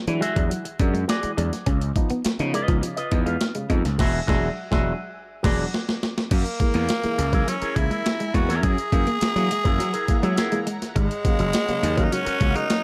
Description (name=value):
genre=funk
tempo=103 BPM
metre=4/4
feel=straight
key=unclear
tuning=A4 = 440 Hz
part: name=dark upright piano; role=stabs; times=0.1-12.8 s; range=Ab2 to Eb4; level=-33 LUFS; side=equal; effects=none
part: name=gritty slap bass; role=bass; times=0.1-12.5 s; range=E1 to Gb3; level=-27 LUFS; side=equal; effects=overdrive
part: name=breakbeat sampler-style drum kit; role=drums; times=0.1-12.8 s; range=crash cymbal, hi-hat, kick drum, snare drum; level=-26 LUFS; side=equal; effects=overdrive
part: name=electric guitar with an envelope filter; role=accompaniment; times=0.2-12.7 s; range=Db4 to F5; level=-32 LUFS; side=equal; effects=spring reverb
part: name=semi-hollow electric guitar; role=riff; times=0.2-12.7 s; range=F3 to Db4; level=-32 LUFS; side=equal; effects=phaser
part: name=growling tenor saxophone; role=melody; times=6.3-12.8 s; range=Ab3 to Bb4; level=-28 LUFS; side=equal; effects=none
part: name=soft string machine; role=sustained chords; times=7.3-12.8 s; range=Db5 to Bb5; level=-41 LUFS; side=equal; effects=none
room=light reverb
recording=none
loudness=-23 LUFS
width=mono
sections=0.0-6.3 A section; 6.3-12.8 B section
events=band accent 4.0-6.3; drum fill 5.2-6.3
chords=0.0 E9; 1.7 Db9; 4.0 E9; 6.3 Gb9; 11.0 Ab9sus4